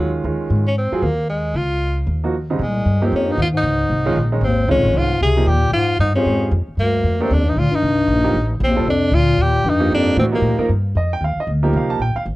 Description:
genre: jazz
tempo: 230 BPM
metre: 4/4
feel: swing 59% on 8ths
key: unclear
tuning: A4 = 439 Hz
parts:
  - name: breathy tenor saxophone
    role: melody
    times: 0.0-10.7 s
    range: Gb3 to Ab4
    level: -20 LUFS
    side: equal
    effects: plate reverb
  - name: clear baby grand piano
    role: accompaniment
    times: 0.0-12.2 s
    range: Ab2 to A5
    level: -22 LUFS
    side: right 3 dB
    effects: none
  - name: upright bass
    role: bass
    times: 0.0-12.4 s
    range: Ab1 to Bb2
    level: -19 LUFS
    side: equal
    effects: none
  - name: mellow bass clarinet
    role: second line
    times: 2.6-10.7 s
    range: C2 to C3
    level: -21 LUFS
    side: left 3 dB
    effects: none
room: moderate club reverb, RT60 0.5 s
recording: worn, warbling old tape, cassette tape, warbly pitch drift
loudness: -15 LUFS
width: side -18 dB against mid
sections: 0.0-2.6 A section; 2.6-11.0 B section; 11.0-12.4 C section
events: none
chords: 0.0 Absus4; 2.6 Bbm11; 6.8 Cm11; 11.0 F13sus4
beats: 0.25 | 0.51 0.77 1.03 1.29 | 1.56 1.82 2.08 2.34 | 2.60 2.87 3.13 3.39 | 3.65 3.91 4.17 4.43 | 4.69 4.95 5.21 5.48 | 5.74 6.00 6.26 6.52 | 6.78 7.04 7.30 7.56 | 7.83 8.09 8.35 8.61 | 8.87 9.13 9.39 9.65 | 9.91 10.17 10.43 10.70 | 10.96 11.22 11.48 11.74 | 12.00 12.26

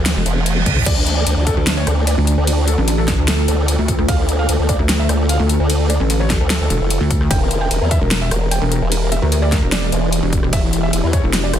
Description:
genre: heavy wobble dubstep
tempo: 149 BPM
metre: 4/4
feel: half-time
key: D minor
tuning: A4 = 440 Hz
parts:
  - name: evolving wavetable pad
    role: sustained chords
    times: 0.0-11.6 s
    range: D3 to G4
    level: -24 LUFS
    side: equal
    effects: chorus, built-in reverb, sidechain pumping
  - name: formant-sweep wobble bass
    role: bass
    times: 0.0-11.6 s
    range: E1 to E2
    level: -17 LUFS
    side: equal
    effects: chorus, overdrive
  - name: dubstep drum kit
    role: drums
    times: 0.1-11.6 s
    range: crash cymbal, hi-hat, ride cymbal, rim click, snare drum, toms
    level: -22 LUFS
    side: left 1 dB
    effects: studio reverb
  - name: reverse cymbal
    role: sound effects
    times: 0.2-0.9 s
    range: none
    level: -24 LUFS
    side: right 6 dB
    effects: none
  - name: pulsing pluck wobble bass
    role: bass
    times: 0.2-11.5 s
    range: E1 to D2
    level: -17 LUFS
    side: equal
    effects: chorus, overdrive
  - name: electronic kick drum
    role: drums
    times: 0.7-11.2 s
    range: none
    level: -19 LUFS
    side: equal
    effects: studio reverb
  - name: felt-muted upright piano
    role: melody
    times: 0.9-11.6 s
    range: D4 to G5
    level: -24 LUFS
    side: equal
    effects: ping-pong delay
room: light reverb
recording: dense, heavily limited modern master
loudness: -14 LUFS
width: side -10 dB against mid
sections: 0.0-11.6 A section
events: reverse cymbal 0.2-0.9; drum fill 0.6-0.9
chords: 0.0 Em; 0.9 Dm; 7.3 Edim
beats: 0.06 0.46 | 0.86 1.27 1.67 2.07 | 2.47 2.88 3.28 3.68 | 4.08 4.49 4.89 5.29 | 5.70 6.10 6.50 6.90 | 7.31 7.71 8.11 8.51 | 8.92 9.32 9.72 10.12 | 10.53 10.93 11.33

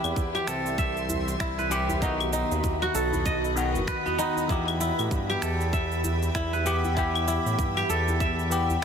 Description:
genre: organic downtempo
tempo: 97 BPM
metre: 4/4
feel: swing 60% on 16ths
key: E harmonic minor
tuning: A4 = 440 Hz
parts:
  - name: bell-like tine electric piano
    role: accompaniment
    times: 0.0-8.8 s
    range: D#3 to B4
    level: -31 LUFS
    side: left 4 dB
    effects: phaser, sidechain pumping, ping-pong delay, shimmer reverb
  - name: granular cloud pad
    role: sustained chords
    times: 0.0-8.8 s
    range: F#4 to C6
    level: -33 LUFS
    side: right 3 dB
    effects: built-in reverb, sidechain pumping, shimmer reverb
  - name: kora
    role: arpeggios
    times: 0.0-8.8 s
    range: B3 to E5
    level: -29 LUFS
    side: right 1 dB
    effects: ping-pong delay, shimmer reverb
  - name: smooth synth bass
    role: bass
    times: 0.0-8.8 s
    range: F#1 to A2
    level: -30 LUFS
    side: right 1 dB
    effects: sidechain pumping
  - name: electronic claves, shaker and finger snaps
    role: drums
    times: 0.0-8.8 s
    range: none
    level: -35 LUFS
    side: equal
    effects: small room ambience, soft clipping on snare
  - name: electronic kick drum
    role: drums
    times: 0.2-8.8 s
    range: none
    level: -29 LUFS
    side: equal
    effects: small room ambience
  - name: djembe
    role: percussion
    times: 0.2-8.8 s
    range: none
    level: -38 LUFS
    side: left 1 dB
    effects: none
room: moderate lush hall reverb, RT60 2.3 s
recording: dense, heavily limited modern master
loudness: -24 LUFS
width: side -7 dB against mid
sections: 0.0-8.8 A section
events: none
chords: 0.0 C; 2.0 B; 4.5 Em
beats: 0.16 0.78 1.40 | 2.02 2.64 3.26 3.88 | 4.49 5.11 5.73 6.35 | 6.97 7.59 8.21 8.82

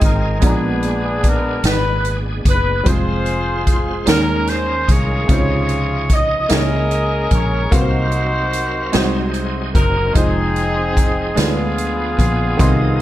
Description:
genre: slow gospel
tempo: 49 BPM (dotted quarters)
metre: 6/8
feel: straight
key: unclear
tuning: A4 = 440 Hz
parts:
  - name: clear horn section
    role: melody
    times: 0.0-13.0 s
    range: B3 to Eb5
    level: -20 LUFS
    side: left 1 dB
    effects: none
  - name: clear baby grand piano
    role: accompaniment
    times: 0.0-13.0 s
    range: Bb2 to C6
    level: -22 LUFS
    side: right 1 dB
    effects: none
  - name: bright tonewheel organ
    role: sustained chords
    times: 0.0-13.0 s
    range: C3 to F5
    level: -29 LUFS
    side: right 2 dB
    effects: slow rotary speaker, chorus vibrato
  - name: fingered electric bass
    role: bass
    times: 0.0-13.0 s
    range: F1 to Eb2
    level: -21 LUFS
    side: equal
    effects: none
  - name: swinging big-band drum kit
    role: drums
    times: 0.0-12.8 s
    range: hi-hat, kick drum, snare drum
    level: -18 LUFS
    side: equal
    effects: none
room: small room ambience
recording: none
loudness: -14 LUFS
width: side -14 dB against mid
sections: 0.0-13.0 A section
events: none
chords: 0.4 Bb7b9; 2.9 Fm; 4.1 Eb7sus4; 5.3 Dbmaj9; 6.5 Dbm6; 7.7 Ebm69/C; 8.9 Ab7/C; 10.2 Fm7; 11.4 Ddim7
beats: | 0.43 1.64 | 2.86 4.08 | 5.29 6.51 | 7.72 8.94 | 10.16 11.38 | 12.60

